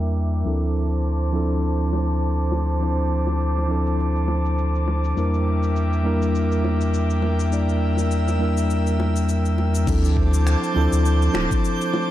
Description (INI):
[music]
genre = sunset chillout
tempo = 102 BPM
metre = 4/4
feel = swing 56% on 16ths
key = D minor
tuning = A4 = 440 Hz
[part]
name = mellow tine electric piano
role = accompaniment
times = 0.0-12.1 s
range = F3 to D5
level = -24 LUFS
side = equal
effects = auto-pan, tape echo
[part]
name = airy breathy pad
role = sustained chords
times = 0.0-12.1 s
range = Bb4 to E6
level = -28 LUFS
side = equal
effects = chorus
[part]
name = warm sub bass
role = bass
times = 0.0-11.5 s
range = D1 to E2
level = -21 LUFS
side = equal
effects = none
[part]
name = smooth R&B drum kit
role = drums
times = 0.0-11.9 s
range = crash cymbal, finger snaps, shaker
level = -36 LUFS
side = left 3 dB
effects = none
[part]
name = bongos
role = percussion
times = 1.9-12.1 s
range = none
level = -31 LUFS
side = left 3 dB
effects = none
[part]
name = electronic kick drum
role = drums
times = 9.9-11.6 s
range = none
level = -23 LUFS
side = equal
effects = overdrive
[part]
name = twinkling granular texture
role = texture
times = 10.2-12.1 s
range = G6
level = -32 LUFS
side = right 6 dB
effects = built-in reverb
[sound]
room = light reverb, digital ambience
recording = dark, warm production, low-pass filter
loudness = -19 LUFS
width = side -13 dB against mid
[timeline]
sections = 0.0-9.9 A section; 9.9-12.1 B section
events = filter sweep on analog synth pad 0.0-9.9; filter sweep 0.0-9.9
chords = 0.5 Dm7; 5.2 Em7b5; 9.9 Dm7